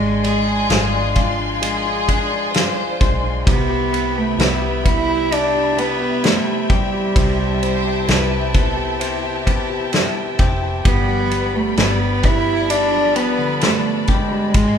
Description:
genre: pop ballad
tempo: 65 BPM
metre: 4/4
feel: straight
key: C major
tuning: A4 = 439 Hz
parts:
  - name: warm cello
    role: melody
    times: 0.0-14.8 s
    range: G3 to E4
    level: -20 LUFS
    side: right 2 dB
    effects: none
  - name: clear concert grand piano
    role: accompaniment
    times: 0.0-14.8 s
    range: C3 to G4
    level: -26 LUFS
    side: left 4 dB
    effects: none
  - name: dark studio string section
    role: sustained chords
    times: 0.0-14.8 s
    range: F3 to C6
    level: -25 LUFS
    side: left 3 dB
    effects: none
  - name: direct-recorded clean electric guitar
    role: arpeggios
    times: 0.0-14.8 s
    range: G2 to C5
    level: -28 LUFS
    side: left 4 dB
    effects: spring reverb
  - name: vintage muted fingered electric bass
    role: bass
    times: 0.0-14.8 s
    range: F1 to C2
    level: -24 LUFS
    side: equal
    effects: none
  - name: warm studio violin section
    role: second line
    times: 0.2-10.6 s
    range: F4 to C5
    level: -25 LUFS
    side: equal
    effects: none
  - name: loose indie drum kit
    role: drums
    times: 0.2-14.8 s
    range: kick drum, ride cymbal, snare drum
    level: -19 LUFS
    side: equal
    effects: none
room: moderate large studio reverb, RT60 1.2 s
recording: band playing live in one room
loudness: -15 LUFS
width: side -8 dB against mid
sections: 0.0-14.8 A section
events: none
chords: 0.0 Fm6/Ab; 3.5 Cmaj7; 10.9 G7

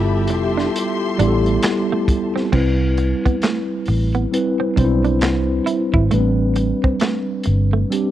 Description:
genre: R&B, neo-soul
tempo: 67 BPM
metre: 4/4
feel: swing 62% on 16ths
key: unclear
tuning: A4 = 440 Hz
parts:
  - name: mellow tine electric piano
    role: accompaniment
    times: 0.0-8.1 s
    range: G3 to C5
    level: -19 LUFS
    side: equal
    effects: medium stereo tremolo
  - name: warm studio string section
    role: sustained chords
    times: 0.0-2.5 s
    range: G4 to C6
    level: -26 LUFS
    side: left 3 dB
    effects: none
  - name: vintage muted fingered electric bass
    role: bass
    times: 0.0-7.8 s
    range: F1 to C2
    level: -18 LUFS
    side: equal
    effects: none
  - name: semi-hollow electric guitar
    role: second line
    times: 0.3-7.8 s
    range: A3 to E4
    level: -24 LUFS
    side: right 7 dB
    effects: analog chorus
  - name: crunchy breakbeat drum kit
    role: drums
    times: 0.3-8.1 s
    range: crash cymbal, handclaps, hi-hat, kick drum, snare drum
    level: -22 LUFS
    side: equal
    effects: none
room: little or no reverb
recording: dry, close 1970s-style studio recording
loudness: -16 LUFS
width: side -12 dB against mid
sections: 0.0-2.5 A section; 2.5-8.1 B section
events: none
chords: 0.0 Fmaj9#11; 2.5 Cmaj7; 6.1 Am11

